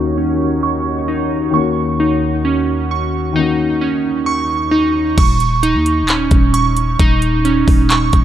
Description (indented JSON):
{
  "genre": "hip hop, trap",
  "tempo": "132 BPM",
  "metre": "4/4",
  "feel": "half-time",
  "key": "Eb minor",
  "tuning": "A4 = 441 Hz",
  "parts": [
    { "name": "dark concert grand piano", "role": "accompaniment", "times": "0.0-5.2 s", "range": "Eb3 to Gb4", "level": "-21 LUFS", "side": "left 6 dB", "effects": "low-pass filter" },
    { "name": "sweeping resonant pad", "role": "sustained chords", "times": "0.0-5.1 s", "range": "Eb2 to Db5", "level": "-21 LUFS", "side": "equal", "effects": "chorus, low-pass filter" },
    { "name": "glassy digital keys", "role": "arpeggios", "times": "0.0-8.2 s", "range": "Db4 to Db6", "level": "-16 LUFS", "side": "right 3 dB", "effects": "chorus, low-pass filter, tape echo" },
    { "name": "growling 808-style bass", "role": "bass", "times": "5.2-8.2 s", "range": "Eb1 to Eb2", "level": "-17 LUFS", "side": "equal", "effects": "none" },
    { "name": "trap drum kit", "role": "drums", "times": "5.2-8.2 s", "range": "crash cymbal, handclaps, hi-hat, kick drum", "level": "-14 LUFS", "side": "equal", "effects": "none" }
  ],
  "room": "light reverb, digital ambience",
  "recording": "dark, warm production",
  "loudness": "-13 LUFS",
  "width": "side -11 dB against mid",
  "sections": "0.0-5.2 A section; 5.2-8.2 B section",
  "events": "filter sweep 0.0-5.2",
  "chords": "0.0 Ebm7; 5.2 Eb7(no3)",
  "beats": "0.18 0.63 1.09 | 1.54 2.00 2.45 2.90 | 3.36 3.81 4.27 4.72 | 5.18 5.63 6.09 6.54 | 7.00 7.45 7.90"
}